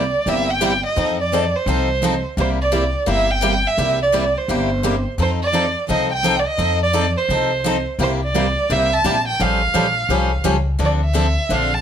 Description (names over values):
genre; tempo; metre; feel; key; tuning
acoustic string swing (jazz manouche); 171 BPM; 4/4; swing 60% on 8ths; C mixolydian; A4 = 441 Hz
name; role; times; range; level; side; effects
warm violin; melody; 0.0-11.8 s; C5 to A5; -20 LUFS; right 2 dB; none
picked steel-string acoustic guitar; accompaniment; 0.0-11.7 s; C3 to A4; -25 LUFS; right 6 dB; none
picked swing-style acoustic guitar; accompaniment; 0.0-11.7 s; C3 to A4; -23 LUFS; left 5 dB; none
upright bass; bass; 0.0-11.8 s; G1 to F2; -22 LUFS; left 1 dB; none
room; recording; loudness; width
moderate studio reverb, RT60 0.7 s; none; -16 LUFS; side -8 dB against mid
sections
0.0-11.8 A section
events
none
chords
0.0 C7; 1.0 F7; 2.4 C7; 5.2 F7; 8.0 C7; 9.4 A7alt; 10.8 Dm7